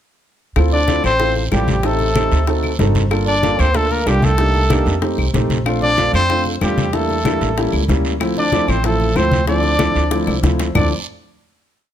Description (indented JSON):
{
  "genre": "Afro-Cuban jazz",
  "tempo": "188 BPM",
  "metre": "4/4",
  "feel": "straight",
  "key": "D minor",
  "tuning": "A4 = 440 Hz",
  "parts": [
    { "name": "warm concert grand piano", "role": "accompaniment", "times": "0.6-10.9 s", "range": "F3 to A4", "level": "-20 LUFS", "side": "left 1 dB", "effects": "none" },
    { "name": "upright bass", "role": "bass", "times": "0.6-10.9 s", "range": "G1 to F2", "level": "-19 LUFS", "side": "right 1 dB", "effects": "none" },
    { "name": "bongos", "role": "percussion", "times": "0.6-10.8 s", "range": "none", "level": "-28 LUFS", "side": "left 5 dB", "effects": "none" },
    { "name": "claves", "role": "percussion", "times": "0.6-10.8 s", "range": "none", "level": "-29 LUFS", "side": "left 6 dB", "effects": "none" },
    { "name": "congas", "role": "percussion", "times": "0.6-10.8 s", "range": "none", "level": "-23 LUFS", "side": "left 2 dB", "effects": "none" },
    { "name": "guiro", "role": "percussion", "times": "0.6-10.8 s", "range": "none", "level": "-30 LUFS", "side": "right 6 dB", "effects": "none" },
    { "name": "clear trumpet", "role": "melody", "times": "0.7-10.9 s", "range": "G4 to D5", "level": "-20 LUFS", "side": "left 1 dB", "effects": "slapback echo" },
    { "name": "bright trombone", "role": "second line", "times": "0.7-10.9 s", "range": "G3 to D4", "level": "-24 LUFS", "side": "right 3 dB", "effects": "none" }
  ],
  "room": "light reverb",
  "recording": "close, detailed microphones",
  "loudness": "-14 LUFS",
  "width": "side -10 dB against mid",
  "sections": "0.6-10.8 A section; 10.8-11.9 final chord",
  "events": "drum fill 9.8-10.8",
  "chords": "0.6 Dm7; 1.8 Am7b5; 2.5 D7b9; 3.1 Gm7; 4.4 Cm9; 5.0 F7; 5.7 Bbmaj7; 6.9 Em7b5; 7.6 A7b9; 8.2 Dm7"
}